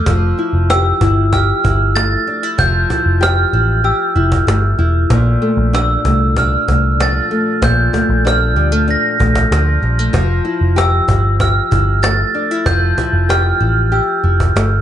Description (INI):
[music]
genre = indie pop, bedroom pop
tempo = 95 BPM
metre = 4/4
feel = straight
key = F major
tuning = A4 = 440 Hz
[part]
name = nylon-string guitar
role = accompaniment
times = 0.0-14.8 s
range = Bb2 to G4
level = -19 LUFS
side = left 3 dB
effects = wide subtle chorus, warbly pitch drift
[part]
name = vintage muted picked electric bass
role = bass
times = 0.1-14.8 s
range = E1 to D2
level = -14 LUFS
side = equal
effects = none
[part]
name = cajon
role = drums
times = 0.1-14.7 s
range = none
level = -20 LUFS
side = equal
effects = none
[part]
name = glockenspiel with hard plastic mallets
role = melody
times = 0.7-14.8 s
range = E6 to Bb6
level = -17 LUFS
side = right 3 dB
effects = analog chorus
[sound]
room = studio ambience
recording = nothing above 10.9 kHz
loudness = -12 LUFS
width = side -10 dB against mid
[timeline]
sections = 0.1-14.8 A section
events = none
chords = 0.1 Fmaj9; 5.1 Bbmaj7; 10.1 Fmaj9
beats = | 0.07 0.70 1.33 1.96 | 2.59 3.21 3.85 4.47 | 5.10 5.73 6.36 6.99 | 7.62 8.25 8.88 9.51 | 10.14 10.78 11.41 12.04 | 12.67 13.30 13.93 14.56